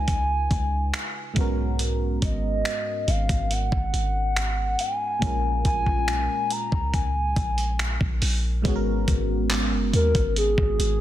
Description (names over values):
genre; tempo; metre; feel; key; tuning
contemporary R&B; 70 BPM; 4/4; straight; G# dorian; A4 = 440 Hz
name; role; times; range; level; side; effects
hollow clarinet-like synth lead; melody; 0.0-11.0 s; G#4 to A#5; -26 LUFS; equal; chorus, ping-pong delay
FM electric piano; accompaniment; 0.0-11.0 s; G#2 to B4; -30 LUFS; right 1 dB; chorus, phaser
warm 808-style bass; bass; 0.0-11.0 s; F#1 to D#2; -25 LUFS; equal; none
dusty soul sampler-style drum kit; drums; 0.1-11.0 s; finger snaps, handclaps, hi-hat, kick drum; -27 LUFS; equal; none
room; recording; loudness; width
little or no reverb; dense, heavily limited modern master; -22 LUFS; side -12 dB against mid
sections
0.0-8.7 A section; 8.7-11.0 B section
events
none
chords
0.0 C#9; 1.4 G#m11; 5.2 A#m7; 8.7 G#m11